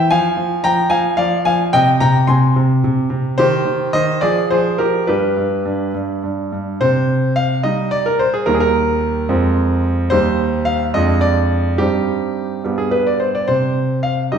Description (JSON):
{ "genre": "classical-period piano sonatina", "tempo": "72 BPM (dotted quarters)", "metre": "6/8", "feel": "rubato", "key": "C minor", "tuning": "A4 = 440 Hz", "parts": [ { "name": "clear concert grand piano", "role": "solo", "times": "0.0-14.4 s", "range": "Eb2 to C6", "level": "-14 LUFS", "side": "equal", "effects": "none" } ], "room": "wet recital hall reverb, RT60 1.4 s", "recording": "recorded in a church or concert hall", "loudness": "-14 LUFS", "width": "side -7 dB against mid", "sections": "0.0-6.8 A section; 6.8-14.4 B section", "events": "none", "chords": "0.1 Fm; 1.7 Cm; 3.4 Cm/Eb; 4.2 Fm69; 5.1 N.C.; 6.8 Cm; 8.5 Eb; 9.3 Fm; 10.1 Cm/Eb; 10.9 Ddim/F; 11.8 Cm/G; 12.6 G; 13.5 Cm" }